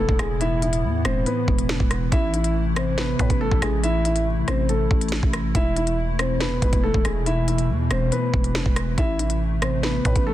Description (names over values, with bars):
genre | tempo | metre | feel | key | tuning
hip hop, drill | 140 BPM | 4/4 | half-time | A harmonic minor | A4 = 441 Hz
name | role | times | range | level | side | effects
dark grand piano | melody | 0.0-10.3 s | G#3 to E5 | -26 LUFS | left 1 dB | ping-pong delay
hollow soft pad | sustained chords | 0.0-10.3 s | A2 to E4 | -28 LUFS | equal | ensemble chorus
growling 808-style bass | bass | 0.0-10.3 s | E1 to A2 | -24 LUFS | equal | none
drill drum kit | drums | 0.1-10.3 s | hi-hat, kick drum, rim click, snare drum | -23 LUFS | equal | vintage 12-bit sampler grit
room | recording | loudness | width
digital ambience | dense, heavily limited modern master | -19 LUFS | side -13 dB against mid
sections
0.0-10.3 A section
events
none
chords
0.0 Esus4; 2.1 Am; 5.5 Esus4; 9.0 Am